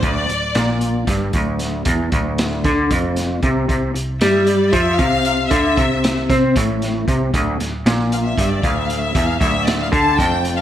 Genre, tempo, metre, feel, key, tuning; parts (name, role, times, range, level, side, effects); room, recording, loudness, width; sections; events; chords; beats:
psychedelic rock; 230 BPM (eighths); 7/8; straight; D minor; A4 = 440 Hz
rich studio string section; sustained chords; 0.0-0.8, 4.2-10.6 s; D5 to A5; -21 LUFS; left 2 dB
electric guitar through a small old amp; riff; 0.0-10.6 s; D2 to C4; -18 LUFS; equal; harmonic tremolo
hollow-body short-scale picked electric bass; bass; 0.0-10.6 s; D1 to C3; -24 LUFS; equal
crunchy breakbeat drum kit; drums; 0.0-10.6 s; hi-hat, kick drum, snare drum; -22 LUFS; equal
moderate echo chamber reverb, RT60 2.2 s; -15 LUFS; side -11 dB against mid
0.0-10.6 A section
string section solo 0.0-10.6
0.0 Dm; 3.7 Cadd9; 7.3 Dm
| 0.03 0.29 0.55 0.81 1.07 1.33 1.59 | 1.86 2.12 2.38 2.64 2.90 3.16 3.42 | 3.69 3.95 4.21 4.47 4.73 4.99 5.25 | 5.51 5.77 6.03 6.29 6.55 6.81 7.07 | 7.33 7.59 7.85 8.11 8.37 8.63 8.89 | 9.15 9.41 9.66 9.92 10.18 10.44